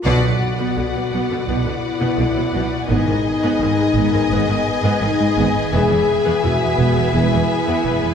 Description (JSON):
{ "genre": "cinematic", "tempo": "85 BPM", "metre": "4/4", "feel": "straight", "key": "unclear", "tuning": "A4 = 441 Hz", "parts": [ { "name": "rich symphonic string section", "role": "sustained chords", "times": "0.0-8.1 s", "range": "B3 to D#5", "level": "-25 LUFS", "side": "left 1 dB", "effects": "none" }, { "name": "warm French horn section", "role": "sustained chords", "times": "0.0-8.1 s", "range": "B3 to G#4", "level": "-21 LUFS", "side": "left 4 dB", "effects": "none" }, { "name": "warm symphonic violin section", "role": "melody", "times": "0.1-8.1 s", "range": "F#5 to G#5", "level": "-27 LUFS", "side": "left 3 dB", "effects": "none" }, { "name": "warm symphonic violin section", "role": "second line", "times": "0.1-8.1 s", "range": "D5 to E5", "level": "-27 LUFS", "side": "left 3 dB", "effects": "none" }, { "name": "warm symphonic viola section", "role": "accompaniment", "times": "0.1-8.1 s", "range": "D3 to B3", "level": "-26 LUFS", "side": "right 4 dB", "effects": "none" }, { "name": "warm symphonic cello section", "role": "bass", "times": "0.1-8.1 s", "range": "E2 to B2", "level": "-23 LUFS", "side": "right 1 dB", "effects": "none" }, { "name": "warm symphonic double bass section", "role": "bass", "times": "0.1-7.9 s", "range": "E1 to B1", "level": "-22 LUFS", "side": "right 2 dB", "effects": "none" }, { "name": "timpani", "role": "percussion", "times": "0.1-1.1 s", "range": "B2", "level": "-28 LUFS", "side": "equal", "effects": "none" } ], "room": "wet scoring stage reverb, RT60 1.8 s", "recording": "heard from further back in the room", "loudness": "-16 LUFS", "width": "side -7 dB against mid", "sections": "0.1-8.1 A section", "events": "band accent 0.1-0.8", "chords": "0.1 Bm; 2.9 G#m; 5.7 E" }